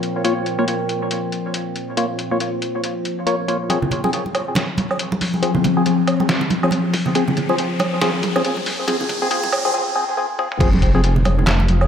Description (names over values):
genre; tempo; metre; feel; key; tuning
deep dubstep; 139 BPM; 4/4; swing 59% on 16ths, half-time; F minor; A4 = 440 Hz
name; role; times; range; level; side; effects
overtone-sweeping drone; sustained chords; 0.0-11.9 s; Bb2 to F4; -23 LUFS; left 2 dB; chorus, built-in reverb
trip hop sampler-style drum kit; drums; 0.0-11.9 s; crash cymbal, handclaps, hi-hat, snare drum, toms, woodblock; -23 LUFS; right 1 dB; none
percussive organ stab; stabs; 0.2-11.0 s; F3 to Db5; -22 LUFS; left 1 dB; chorus, phaser, dub echo
electronic kick drum; drums; 3.7-10.9 s; none; -20 LUFS; equal; high-pass filter on kick
congas; percussion; 3.7-11.8 s; none; -25 LUFS; right 3 dB; dub echo
riser; sound effects; 6.0-9.7 s; none; -30 LUFS; equal; none
dark detuned saw bass; bass; 10.6-11.9 s; F1; -16 LUFS; equal; none
room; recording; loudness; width
wet plate reverb, RT60 1.7 s; dreamy mix soaked in reverb, high-pass filter; -17 LUFS; side -8 dB against mid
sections
0.0-3.7 A section; 3.7-10.6 B section; 10.6-11.9 C section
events
build-up 3.7-10.6; filter sweep on synth drone 3.7-10.6; riser 6.0-9.7; drum fill 10.4; drop 10.6-11.9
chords
0.0 Bbm; 3.7 Fm